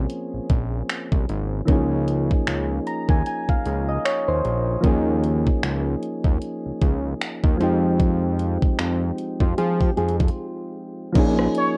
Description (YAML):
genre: contemporary R&B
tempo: 76 BPM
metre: 4/4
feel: swing 58% on 16ths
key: Bb dorian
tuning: A4 = 440 Hz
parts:
  - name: soft electric-piano-like synth keys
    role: accompaniment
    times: 0.0-11.8 s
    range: E3 to Bb5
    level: -27 LUFS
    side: equal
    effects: chorus
  - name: fat analog bass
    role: bass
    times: 0.0-11.5 s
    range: Ab1 to F3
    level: -26 LUFS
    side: equal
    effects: none
  - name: smooth R&B drum kit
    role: drums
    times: 0.1-11.8 s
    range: crash cymbal, finger snaps, hi-hat, kick drum, rim click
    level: -23 LUFS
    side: equal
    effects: none
  - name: nylon-string guitar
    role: arpeggios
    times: 9.4-11.1 s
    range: F4 to Ab4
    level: -30 LUFS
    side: equal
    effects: tape echo
  - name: warm velvety synth lead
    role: melody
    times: 11.6-11.7 s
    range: Db5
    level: -23 LUFS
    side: equal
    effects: chorus
room: light reverb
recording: worn, warbling old tape, cassette tape, warbly pitch drift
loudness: -22 LUFS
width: mono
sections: 0.0-11.2 A section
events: synth keys fill 2.5-4.8; break 10.4-11.2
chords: 0.0 Bbm9; 1.7 Db6; 4.8 Eb7sus4; 7.6 Fm7; 11.2 Bbm11